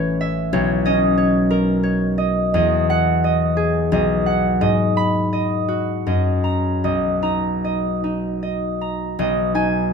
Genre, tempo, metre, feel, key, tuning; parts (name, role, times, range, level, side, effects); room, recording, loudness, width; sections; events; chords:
classical, solo harp piece; 74-92 BPM; 3/4; rubato; B major; A4 = 440 Hz
concert harp; solo; 0.0-9.9 s; A1 to B5; -17 LUFS; equal
light reverb; close, detailed microphones; -17 LUFS; side -6 dB against mid
0.0-9.2 A section
0.0 Aadd9; 0.5 Bmaj9; 2.5 Emaj9; 3.9 B6; 4.6 G#m7; 6.1 F#69; 6.8 Bmaj7; 9.2 B6